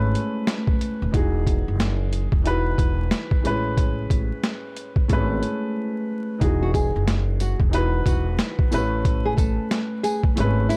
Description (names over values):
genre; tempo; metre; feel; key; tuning
hip hop, boom-bap hip-hop; 91 BPM; 4/4; swing 62% on 16ths; E major; A4 = 440 Hz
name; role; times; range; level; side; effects
dark upright piano; accompaniment; 0.0-10.8 s; A2 to B4; -28 LUFS; equal; cassette tape, high-pass filter, low-pass filter
upright bass; bass; 0.0-10.7 s; D#1 to A1; -26 LUFS; equal; none
boom bap sampler-style drum kit; drums; 0.2-10.8 s; hi-hat, kick drum, snare drum; -24 LUFS; equal; none
nylon-string guitar; melody; 6.6-10.8 s; E4 to A4; -31 LUFS; equal; high-pass filter, low-pass filter, tape echo
tambourine; percussion; 6.7-10.8 s; none; -45 LUFS; equal; none
room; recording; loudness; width
small room ambience; dark, warm production, vinyl crackle; -23 LUFS; mono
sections
0.0-6.4 A section; 6.4-10.8 B section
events
break 5.8-6.4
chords
0.0 Amaj9; 1.1 Emaj9; 3.4 Amaj9; 6.4 Emaj9; 8.7 Amaj9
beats
0.48 | 1.14 1.80 2.46 3.12 | 3.78 4.43 5.09 5.75 | 6.41 7.07 7.73 8.39 | 9.05 9.71 10.37